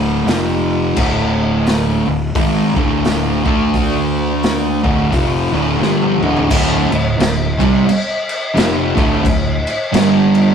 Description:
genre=stoner and doom metal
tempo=87 BPM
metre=4/4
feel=swing 59% on 8ths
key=D minor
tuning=A4 = 440 Hz
part: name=fuzz guitar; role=riff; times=0.0-10.5 s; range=D2 to D4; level=-15 LUFS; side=right 1 dB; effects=distortion
part: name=fuzz fingered electric bass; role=bass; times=0.0-10.5 s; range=D1 to D2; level=-21 LUFS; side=left 1 dB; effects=overdrive
part: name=raw garage drum kit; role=drums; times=0.3-10.5 s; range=crash cymbal, hi-hat, kick drum, snare drum, toms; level=-19 LUFS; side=equal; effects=none
room=light reverb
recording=rough rehearsal-room recording, tube saturation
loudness=-13 LUFS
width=side -7 dB against mid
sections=0.0-6.5 A section; 6.5-10.5 B section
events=drum fill 5.8-6.5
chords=0.3 F5; 1.0 Dm; 9.9 G5

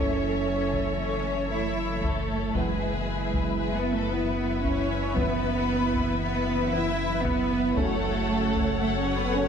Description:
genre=cinematic, hybrid orchestral and electronic film score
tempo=115 BPM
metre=5/4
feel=straight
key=unclear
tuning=A4 = 443 Hz
part: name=warm symphonic violin section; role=melody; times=0.0-9.5 s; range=E5 to F#5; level=-36 LUFS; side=left 5 dB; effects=none
part: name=rich symphonic violin section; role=second line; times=0.0-9.5 s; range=G#4 to E5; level=-33 LUFS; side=left 4 dB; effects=none
part: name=rich symphonic viola section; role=accompaniment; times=0.0-9.5 s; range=A4 to C#5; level=-35 LUFS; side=equal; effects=none
part: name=dark French horn section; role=sustained chords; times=0.0-9.5 s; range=E4 to C#5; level=-37 LUFS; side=left 6 dB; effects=none
part: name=mellow trombone section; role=sustained chords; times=0.0-9.5 s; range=C#3 to C#4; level=-36 LUFS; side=right 5 dB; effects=none
part: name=phased analog pad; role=sustained chords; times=0.0-9.5 s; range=C#3 to C#5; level=-34 LUFS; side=left 1 dB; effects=phaser, chorus
part: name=pure sine sub bass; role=bass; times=0.0-9.5 s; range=F#1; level=-34 LUFS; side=left 1 dB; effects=none
part: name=rich symphonic cello section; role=bass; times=0.0-9.5 s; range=G#3 to E4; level=-29 LUFS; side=right 3 dB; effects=none
part: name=warm studio double bass section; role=bass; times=0.0-9.5 s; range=F#1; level=-33 LUFS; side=right 5 dB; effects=none
part: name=taiko ensemble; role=drums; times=0.7-9.0 s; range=none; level=-33 LUFS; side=equal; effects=none
room=moderate scoring stage reverb, RT60 1.9 s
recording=none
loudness=-24 LUFS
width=side -7 dB against mid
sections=0.0-9.5 A section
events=none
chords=0.0 A/F#; 2.6 E/F#; 7.8 F#m

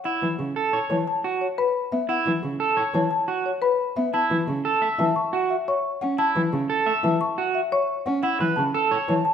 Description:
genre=classical, minimalist pattern music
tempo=176 BPM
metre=6/4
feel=straight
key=unclear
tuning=A4 = 441 Hz
part: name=marimba with medium hard mallets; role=melody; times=0.0-9.3 s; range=B4 to C#6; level=-26 LUFS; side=left 5 dB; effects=none
part: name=electric guitar at the edge of break-up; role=arpeggios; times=0.1-9.1 s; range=E4 to E5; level=-24 LUFS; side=right 4 dB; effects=none
part: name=rich cello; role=accompaniment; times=0.2-9.2 s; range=C#3 to C#4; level=-26 LUFS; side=equal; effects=none
part: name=celesta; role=arpeggios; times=0.9-9.3 s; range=A5 to E6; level=-30 LUFS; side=equal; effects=none
room=wet large studio reverb, RT60 1.3 s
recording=none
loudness=-21 LUFS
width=side -8 dB against mid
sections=0.0-9.3 A section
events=none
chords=0.0 Aadd9; 4.1 F#m; 8.2 Aadd9

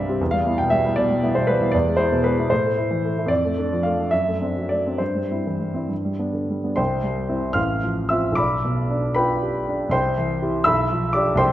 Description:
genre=classical, romantic character piece for solo piano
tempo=65-83 BPM (dotted quarters)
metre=6/8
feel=rubato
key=C major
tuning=A4 = 439 Hz
part: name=warm grand piano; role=solo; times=0.0-11.5 s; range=A1 to F6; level=-19 LUFS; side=equal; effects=none
room=moderate scoring stage reverb, RT60 1.7 s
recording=none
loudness=-19 LUFS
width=side -13 dB against mid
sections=0.0-6.8 A section; 6.8-11.5 B section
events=none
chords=0.2 Em; 1.7 E; 2.5 Am; 3.3 Dm/F; 4.1 D7/F#; 5.0 C/G; 5.9 G; 6.8 C; 7.6 F/A; 8.4 G7/B; 9.9 C; 10.7 G7/B

